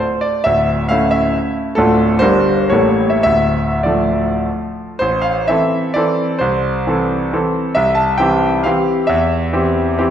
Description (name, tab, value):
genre	classical, romantic triple-time dance for piano with dotted rhythms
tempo	95-147 BPM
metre	3/4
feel	rubato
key	D minor, A minor from 5.0 s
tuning	A4 = 440 Hz
part	bright concert grand piano	solo	0.0-10.1 s	D1 to A5	-13 LUFS	equal	none
room	wet recital hall reverb, RT60 1.6 s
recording	dark, warm production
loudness	-13 LUFS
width	side -9 dB against mid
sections	0.0-5.0 A section; 5.0-10.1 B section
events	none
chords	0.5 A/D; 1.8 Dm; 2.2 Gm; 2.7 A7b9; 3.3 Dm; 5.0 Am; 6.4 Am/C; 7.8 C; 9.1 C/E